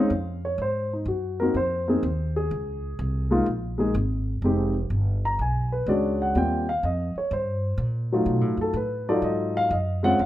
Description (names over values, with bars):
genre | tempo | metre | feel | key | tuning
jazz piano trio | 125 BPM | 4/4 | swing 68% on 8ths | unclear | A4 = 441 Hz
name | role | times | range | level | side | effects
dark concert grand piano | melody | 0.0-10.3 s | Gb3 to Bb5 | -24 LUFS | left 1 dB | none
upright bass | bass | 0.1-10.3 s | F1 to B2 | -27 LUFS | equal | none
room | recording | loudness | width
light reverb | close, detailed microphones | -23 LUFS | side -14 dB against mid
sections
0.0-10.3 A section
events
none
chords
0.0 Bbm (rootless); 0.6 Ab7; 2.5 Db5; 4.4 Fm9; 5.4 Bm69; 6.3 Eb6; 8.3 B7#11 (rootless)